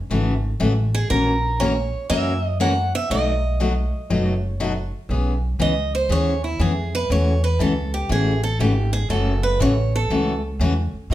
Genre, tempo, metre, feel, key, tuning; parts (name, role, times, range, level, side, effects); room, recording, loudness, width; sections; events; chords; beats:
acoustic string swing (jazz manouche); 120 BPM; 4/4; swing 66% on 8ths; E major; A4 = 439 Hz
picked steel-string acoustic guitar; accompaniment; 0.1-11.1 s; B2 to A#4; -23 LUFS; left 3 dB
upright bass; bass; 0.1-11.1 s; F#1 to B2; -22 LUFS; equal
picked steel-string acoustic guitar; melody; 0.9-10.4 s; E4 to F#5; -24 LUFS; right 3 dB
moderate large studio reverb, RT60 0.8 s; band playing live in one room; -18 LUFS; side -14 dB against mid
0.0-5.1 A section; 5.1-11.1 B section
steel-string acoustic guitar solo 5.1-11.1
0.0 A6; 1.1 F#7/A#; 3.1 B7; 5.1 E6; 7.1 A6; 9.1 F#m7
0.10 0.60 | 1.10 1.60 2.10 2.60 | 3.10 3.60 4.10 4.60 | 5.10 5.60 6.10 6.60 | 7.10 7.60 8.10 8.60 | 9.10 9.60 10.10 10.60 | 11.10